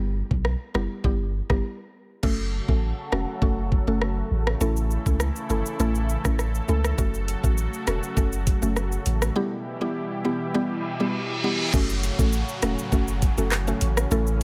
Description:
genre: dancehall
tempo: 101 BPM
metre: 4/4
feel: straight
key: F# phrygian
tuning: A4 = 443 Hz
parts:
  - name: mallet-like synth pluck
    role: accompaniment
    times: 0.0-14.4 s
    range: G3 to A4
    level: -31 LUFS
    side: equal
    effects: chorus, phaser
  - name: punchy sub bass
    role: bass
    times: 0.0-14.4 s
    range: E1 to C#2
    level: -28 LUFS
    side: equal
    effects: none
  - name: island pop drum kit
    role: drums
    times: 0.3-14.4 s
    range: crash cymbal, handclaps, hi-hat, kick drum, rim click, shaker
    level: -28 LUFS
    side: equal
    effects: none
  - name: lush unison pad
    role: sustained chords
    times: 2.2-14.4 s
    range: A2 to A4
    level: -34 LUFS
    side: equal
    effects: chorus, phaser, sidechain pumping
  - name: reverse cymbal and downlifter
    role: sound effects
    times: 10.8-14.4 s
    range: none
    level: -34 LUFS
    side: equal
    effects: none
room: light reverb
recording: none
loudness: -25 LUFS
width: mono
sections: 0.0-2.2 A section; 2.2-11.7 B section; 11.7-14.4 C section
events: break 1.6-2.2; reverse cymbal 10.8-11.7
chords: 0.0 Em; 2.2 F#m; 4.6 A; 7.0 F#m; 9.4 Em; 11.7 F#m

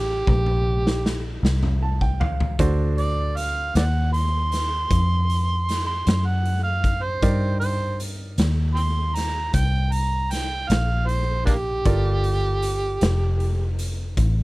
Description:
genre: slow blues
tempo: 52 BPM (dotted quarters)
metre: 12/8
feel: straight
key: G minor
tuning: A4 = 440 Hz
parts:
  - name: overdriven harmonica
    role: second line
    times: 0.0-13.7 s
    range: Bb3 to C6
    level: -26 LUFS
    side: right 2 dB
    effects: none
  - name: bright upright piano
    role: accompaniment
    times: 0.0-14.4 s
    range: D4 to A5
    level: -30 LUFS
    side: right 4 dB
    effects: none
  - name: vintage muted fingered electric bass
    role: bass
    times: 0.0-14.4 s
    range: F1 to G2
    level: -22 LUFS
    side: equal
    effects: none
  - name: raw garage drum kit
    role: drums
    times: 0.3-14.4 s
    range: hi-hat, kick drum, snare drum, toms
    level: -26 LUFS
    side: equal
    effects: none
room: little or no reverb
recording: none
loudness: -20 LUFS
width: side -21 dB against mid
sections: 0.0-14.4 A section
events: harmonica solo 0.0-14.4; drum fill 0.3-2.6; upright piano fill 1.4-2.6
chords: 0.0 Gm7; 2.6 D7#9; 7.2 Cm7; 11.9 Gm7

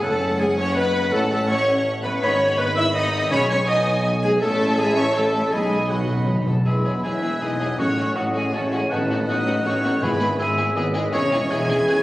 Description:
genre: classical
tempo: 162 BPM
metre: 3/4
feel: straight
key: E major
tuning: A4 = 439 Hz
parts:
  - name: warm symphonic violin section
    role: melody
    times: 0.0-12.0 s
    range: F#4 to B5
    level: -32 LUFS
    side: left 2 dB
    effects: none
  - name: mellow clarinet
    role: second line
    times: 0.0-12.0 s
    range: F#4 to E5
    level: -28 LUFS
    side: left 1 dB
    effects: none
  - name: rich symphonic violin section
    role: second line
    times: 0.0-12.0 s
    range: F#4 to E6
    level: -32 LUFS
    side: left 2 dB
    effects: none
  - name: silver concert flute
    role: second line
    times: 0.0-12.0 s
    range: F#5 to G#6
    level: -31 LUFS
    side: right 1 dB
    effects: none
  - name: warm oboe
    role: second line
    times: 0.0-12.0 s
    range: F#4 to G#5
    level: -30 LUFS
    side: equal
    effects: none
  - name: rich symphonic viola section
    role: accompaniment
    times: 0.0-12.0 s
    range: A3 to E5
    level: -26 LUFS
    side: equal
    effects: none
  - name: warm bassoon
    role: accompaniment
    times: 0.0-12.0 s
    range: C#3 to E4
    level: -32 LUFS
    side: equal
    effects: none
  - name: clear trombone section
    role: sustained chords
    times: 0.0-12.0 s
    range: G#2 to C#4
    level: -34 LUFS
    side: right 1 dB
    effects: none
  - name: warm French horn section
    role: sustained chords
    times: 0.0-12.0 s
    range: F#3 to G#4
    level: -28 LUFS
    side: left 1 dB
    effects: none
  - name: dark trumpet section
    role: stabs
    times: 0.0-6.5 s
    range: F#5 to B5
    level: -31 LUFS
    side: equal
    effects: none
  - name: mellow tuba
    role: bass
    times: 0.0-12.0 s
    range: E1 to B1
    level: -26 LUFS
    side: right 1 dB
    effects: none
  - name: rich symphonic cello section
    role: bass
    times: 0.0-12.0 s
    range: E2 to E4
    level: -29 LUFS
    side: equal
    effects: none
  - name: rich symphonic double bass section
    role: bass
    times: 0.0-12.0 s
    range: E1 to B1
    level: -32 LUFS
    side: right 1 dB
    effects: none
  - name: timpani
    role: percussion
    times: 3.3-6.6, 10.0-10.5 s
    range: G#2 to B2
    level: -26 LUFS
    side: equal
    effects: none
room: wet concert hall reverb, RT60 2.3 s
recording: recorded on a phone in the room, studio ambience, compression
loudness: -18 LUFS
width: side -16 dB against mid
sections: 0.0-6.7 A section; 6.7-12.0 B section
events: timpani fill 5.5-6.7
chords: 0.0 F#m; 1.1 F#m/A; 2.2 G#m; 3.3 G#m/B; 4.4 A; 5.5 B; 6.7 E; 7.8 F#m/A; 8.9 B7/A; 10.0 E/G#; 11.1 C#m/E

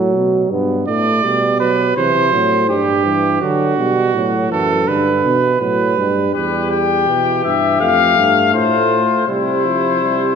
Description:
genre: classical, imitative canzona for brass ensemble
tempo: 82 BPM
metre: 4/4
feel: straight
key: G major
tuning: A4 = 445 Hz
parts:
  - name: mellow trombone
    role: accompaniment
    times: 0.0-10.4 s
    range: D3 to B3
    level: -20 LUFS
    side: right 2 dB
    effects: none
  - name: mellow bass trombone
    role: bass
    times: 0.0-10.4 s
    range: E2 to D3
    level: -20 LUFS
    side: right 1 dB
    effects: none
  - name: warm trumpet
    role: second line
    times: 0.9-10.4 s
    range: E4 to D5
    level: -17 LUFS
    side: right 5 dB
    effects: none
  - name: clear trumpet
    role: melody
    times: 6.3-10.4 s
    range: B4 to G5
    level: -15 LUFS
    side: left 10 dB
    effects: none
room: wet recital hall reverb, RT60 1.6 s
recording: minimal, uncompressed stereo recording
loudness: -13 LUFS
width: side -6 dB against mid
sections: 0.0-6.3 A section; 6.3-10.4 B section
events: none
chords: 0.0 F#madd11; 0.5 G; 2.0 C; 3.4 D; 4.9 G; 6.3 Em; 7.8 F; 9.3 Gsus4/C

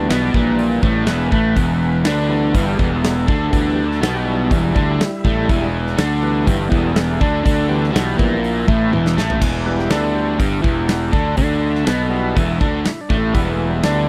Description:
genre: blues rock power trio and southern rock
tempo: 122 BPM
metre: 4/4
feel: straight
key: E minor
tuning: A4 = 441 Hz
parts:
  - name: overdriven tonewheel organ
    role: sustained chords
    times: 0.0-14.1 s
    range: E3 to E5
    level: -27 LUFS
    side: equal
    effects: slow rotary speaker
  - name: crunchy overdriven guitar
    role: riff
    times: 0.0-14.1 s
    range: E2 to D4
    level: -21 LUFS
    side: equal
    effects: none
  - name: fuzz fingered electric bass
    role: bass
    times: 0.0-14.1 s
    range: E1 to D2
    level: -24 LUFS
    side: equal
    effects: overdrive
  - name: huge arena drum kit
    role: drums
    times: 0.1-13.9 s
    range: crash cymbal, hi-hat, kick drum, snare drum, toms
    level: -22 LUFS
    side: equal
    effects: none
room: little or no reverb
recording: dry, close 1970s-style studio recording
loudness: -17 LUFS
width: mono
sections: 0.0-9.4 A section; 9.4-14.1 A section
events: tonewheel organ solo 0.0-14.1; drum fill 8.9-9.4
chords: 0.0 Em

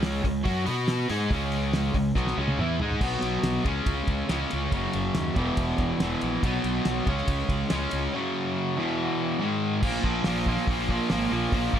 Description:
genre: classic rock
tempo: 141 BPM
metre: 4/4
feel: straight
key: unclear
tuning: A4 = 440 Hz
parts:
  - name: cranked stack guitar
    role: riff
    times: 0.0-11.8 s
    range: E2 to Cb5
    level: -26 LUFS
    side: equal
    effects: overdrive
  - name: fuzz fingered electric bass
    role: bass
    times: 0.0-11.8 s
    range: E1 to Cb3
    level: -30 LUFS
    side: equal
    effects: overdrive
  - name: cloth-damped thuddy drum kit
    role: drums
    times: 0.0-11.8 s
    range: crash cymbal, hi-hat, kick drum, ride cymbal, snare drum, toms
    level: -30 LUFS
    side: equal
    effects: none
room: light reverb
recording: none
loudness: -24 LUFS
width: side -9 dB against mid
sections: 0.0-3.0 A section; 3.0-9.8 B section; 9.8-11.8 C section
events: drum fill 2.2-3.0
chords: 0.0 Db5; 0.7 Cb5; 1.1 Db5; 3.0 Cb5; 3.7 Db5; 4.7 Gb5; 5.4 E5; 6.4 Cb5; 7.1 Db5; 8.1 Gb5; 8.8 E5; 9.4 Ab5; 9.8 Bb5

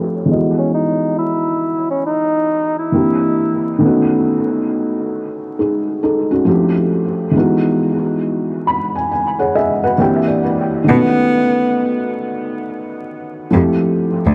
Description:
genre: lo-fi hip hop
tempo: 68 BPM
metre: 4/4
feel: swing 64% on 16ths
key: E major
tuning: A4 = 440 Hz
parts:
  - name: felt-muted upright piano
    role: accompaniment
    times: 0.0-14.3 s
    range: D#3 to B5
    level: -18 LUFS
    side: equal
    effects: low-pass filter, dub echo
  - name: breathy tenor saxophone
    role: melody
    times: 0.6-3.8, 10.9-12.0 s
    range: B3 to E4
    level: -21 LUFS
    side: equal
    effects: low-pass filter, dub echo
  - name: clear cello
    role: bass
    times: 10.9-14.3 s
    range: D2 to B2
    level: -17 LUFS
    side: equal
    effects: none
room: moderate plate reverb, RT60 3.6 s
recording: echo-heavy mix, vinyl crackle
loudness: -16 LUFS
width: mono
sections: 0.0-10.9 A section; 10.9-14.3 B section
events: filter sweep 0.0-10.9; felt piano fill 8.2-10.9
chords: 0.3 Emaj9; 2.9 C9; 3.8 B9; 6.5 Fmaj9; 7.3 Emaj9; 10.0 C9; 10.9 B9; 13.5 Fmaj9

